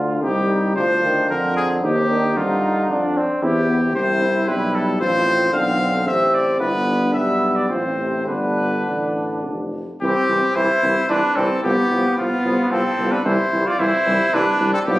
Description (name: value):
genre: classical, brass quintet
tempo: 112 BPM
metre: 3/4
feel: rubato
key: C minor, C major from 3.4 s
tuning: A4 = 440 Hz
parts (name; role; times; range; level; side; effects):
- dark trumpet; second line; 0.0-15.0 s; B3 to F4; -23 LUFS; right 1 dB; none
- clear trombone; accompaniment; 0.0-15.0 s; C3 to G3; -24 LUFS; equal; none
- mellow French horn; accompaniment; 0.0-15.0 s; G3 to G4; -28 LUFS; left 2 dB; none
- mellow tuba; bass; 0.0-15.0 s; F1 to G2; -24 LUFS; equal; none
- clear trumpet; melody; 0.2-15.0 s; F4 to F5; -21 LUFS; left 1 dB; none
room: moderate recital hall reverb, RT60 1.5 s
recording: recorded on a phone in the room, club reverb, compression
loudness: -16 LUFS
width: side -17 dB against mid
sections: 0.0-10.0 A section; 10.0-15.0 B section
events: none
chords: 0.2 Cm; 1.8 Cm/Eb; 3.4 C; 5.0 F/A; 6.6 G; 7.7 F/A; 8.3 G; 10.0 C; 11.6 G9; 13.3 C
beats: | 0.22 0.76 1.30 | 1.84 2.37 2.90 | 3.43 3.96 4.48 | 5.00 5.53 6.07 | 6.60 7.14 7.70 | 8.28 8.87 9.45 | 10.02 10.56 11.10 | 11.64 12.18 12.72 | 13.26 13.80 14.34 | 14.87